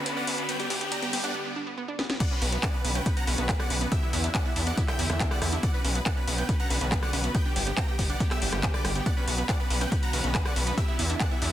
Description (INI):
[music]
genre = uplifting trance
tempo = 140 BPM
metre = 4/4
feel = straight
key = B minor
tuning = A4 = 439 Hz
[part]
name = big supersaw lead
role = melody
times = 0.0-11.5 s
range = E4 to A#5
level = -34 LUFS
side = equal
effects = sidechain pumping, tape echo
[part]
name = wide unison pluck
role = second line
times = 0.0-11.5 s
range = E5 to A#6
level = -39 LUFS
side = equal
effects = phaser, vintage 12-bit sampler grit, sidechain pumping
[part]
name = gritty driven synth bass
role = bass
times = 0.0-11.5 s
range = G1 to E2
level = -30 LUFS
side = equal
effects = tube saturation, sidechain pumping, high-pass filter
[part]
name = riser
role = sound effects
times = 0.0-1.3 s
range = none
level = -35 LUFS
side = left 1 dB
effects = none
[part]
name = lush unison pad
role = sustained chords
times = 0.1-11.5 s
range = D3 to G4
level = -36 LUFS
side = equal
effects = chorus, sidechain pumping
[part]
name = wide unison pluck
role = arpeggios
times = 0.1-11.5 s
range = B3 to D4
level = -37 LUFS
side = right 3 dB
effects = sidechain pumping, digital delay
[part]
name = techno drum kit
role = drums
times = 0.1-11.5 s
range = crash cymbal, handclaps, hi-hat, rim click, snare drum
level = -31 LUFS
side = left 1 dB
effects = sidechain pumping on hats, sidechain pumping on cymbals
[part]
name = electronic kick drum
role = drums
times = 2.2-11.3 s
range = none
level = -28 LUFS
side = equal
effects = none
[sound]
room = light reverb, digital ambience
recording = dense, heavily limited modern master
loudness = -24 LUFS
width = side -12 dB against mid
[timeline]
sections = 0.0-2.2 A section; 2.2-11.5 B section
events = build-up 0.0-2.2; riser 0.0-1.3; break 1.3-2.2; drum fill 2.0; drop 2.2-11.5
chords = 0.5 G; 2.2 Bmadd9; 3.9 Em7; 5.6 Bmadd9; 7.3 G; 9.1 Bmadd9; 10.8 Em7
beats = 0.06 | 0.49 0.92 1.35 1.77 | 2.20 2.63 3.06 3.49 | 3.92 4.35 4.78 5.20 | 5.63 6.06 6.49 6.92 | 7.35 7.78 8.20 8.63 | 9.06 9.49 9.92 10.35 | 10.78 11.20